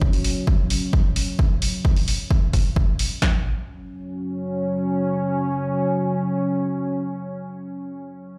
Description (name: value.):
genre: driving peak-time techno.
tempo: 131 BPM.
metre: 4/4.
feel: straight.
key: unclear.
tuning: A4 = 439 Hz.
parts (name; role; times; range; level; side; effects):
deep dark ambient pad; drone; 0.0-7.6 s; F#3 to C#4; -27 LUFS; equal; chorus, built-in reverb, sidechain pumping.
punchy analog drum machine; drums; 0.0-3.3 s; kick drum, snare drum; -21 LUFS; equal; none.
electronic hi-hat; drums; 0.1-3.1 s; none; -31 LUFS; equal; sidechain pumping on cymbals, sidechain pumping on hats.
room: light reverb.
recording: played on a big sound system in a bare room, large studio reverb.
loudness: -22 LUFS.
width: mono.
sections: 0.0-3.2 A section; 3.2-6.9 B section.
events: none.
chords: 0.0 F#5.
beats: 0.01 0.47 0.93 | 1.39 1.85 2.31 2.76 | 3.22 3.68 4.14 4.59 | 5.05 5.51 5.97 6.43.